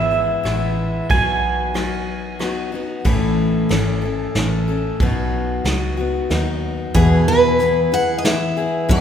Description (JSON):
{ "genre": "honky-tonk and classic country", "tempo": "92 BPM", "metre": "3/4", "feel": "straight", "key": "E major", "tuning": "A4 = 440 Hz", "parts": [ { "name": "pedal steel guitar", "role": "second line", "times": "0.0-2.7 s", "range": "E5 to G#5", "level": "-21 LUFS", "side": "right 3 dB", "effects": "none" }, { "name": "picked steel-string acoustic guitar", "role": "accompaniment", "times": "0.0-9.0 s", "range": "E2 to A4", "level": "-21 LUFS", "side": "left 4 dB", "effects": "none" }, { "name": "vintage muted fingered electric bass", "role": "bass", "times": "0.0-9.0 s", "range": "G#1 to E2", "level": "-23 LUFS", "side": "right 1 dB", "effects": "none" }, { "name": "vintage brush drum kit", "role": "drums", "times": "0.5-9.0 s", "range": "hi-hat, kick drum, ride cymbal, rim click, snare drum", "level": "-23 LUFS", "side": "right 1 dB", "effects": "none" }, { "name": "picked steel-string acoustic guitar", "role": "melody", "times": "6.9-9.0 s", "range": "G#4 to F#5", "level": "-17 LUFS", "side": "right 1 dB", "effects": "none" } ], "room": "wet scoring stage reverb, RT60 2.1 s", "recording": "recorded in a church or concert hall", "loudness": "-16 LUFS", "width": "side -8 dB against mid", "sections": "0.0-7.0 A section; 7.0-9.0 B section", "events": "pedal steel guitar solo 0.0-7.0", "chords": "0.0 E; 1.1 B; 3.1 A; 5.0 B; 7.0 E", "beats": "0.45 | 1.10 1.75 2.40 | 3.05 3.70 4.35 | 5.00 5.65 6.30 | 6.95 7.60 8.25 | 8.90" }